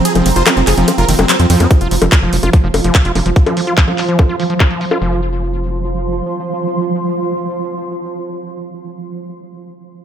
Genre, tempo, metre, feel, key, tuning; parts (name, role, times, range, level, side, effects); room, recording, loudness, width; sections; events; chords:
psychedelic trance; 145 BPM; 4/4; straight; A4 = 440 Hz
pulsing gated texture; sustained chords; 0.0-9.1 s; F3; -22 LUFS; right 4 dB; chorus, built-in reverb, sidechain pumping
deep dark ambient pad; texture; 0.0-9.1 s; F4 to C6; -23 LUFS; right 1 dB; chorus, built-in reverb, sidechain pumping
supersaw stab; melody; 0.1-1.7 s; C4 to C5; -18 LUFS; right 1 dB; phaser, sidechain pumping, digital delay
big-room dance drum kit; drums; 0.1-5.0 s; bongos, handclaps, hi-hat, ride cymbal; -16 LUFS; left 2 dB; overdrive, low-pass filter on hats, studio reverb, low-pass filter on cymbals, low-pass filter on perc, low-pass filter on snare
overdriven acid bass; riff; 0.2-5.2 s; Eb3 to F4; -18 LUFS; equal; distortion, auto-pan, sidechain pumping, digital delay
tight sequencer bass; bass; 0.2-6.2 s; F1 to F2; -16 LUFS; equal
electronic kick drum; drums; 1.7-4.7 s; -9 LUFS; equal; studio reverb
light reverb; -12 LUFS; side -9 dB against mid
0.0-1.7 A section; 1.7-5.0 B section; 5.0-8.3 C section
drop 0.0-1.7; break 0.1-1.7
0.0 F5